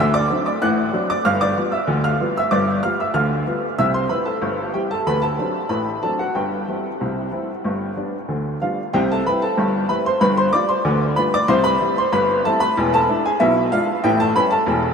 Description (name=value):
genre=ragtime piano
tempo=94 BPM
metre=2/4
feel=straight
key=C major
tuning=A4 = 441 Hz
part: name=clear upright piano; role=solo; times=0.0-14.9 s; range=E1 to F#6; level=-17 LUFS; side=equal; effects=analog chorus, ping-pong delay
room=wet huge ambient reverb, RT60 8.8 s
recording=dreamy mix soaked in reverb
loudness=-17 LUFS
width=side -6 dB against mid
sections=0.0-8.9 A section; 8.9-14.9 B section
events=none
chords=0.0 D7; 1.3 G7; 3.8 C; 5.1 D7; 6.3 C/G; 7.6 G; 8.9 C; 10.2 G7; 11.5 C; 12.8 E7; 14.0 A7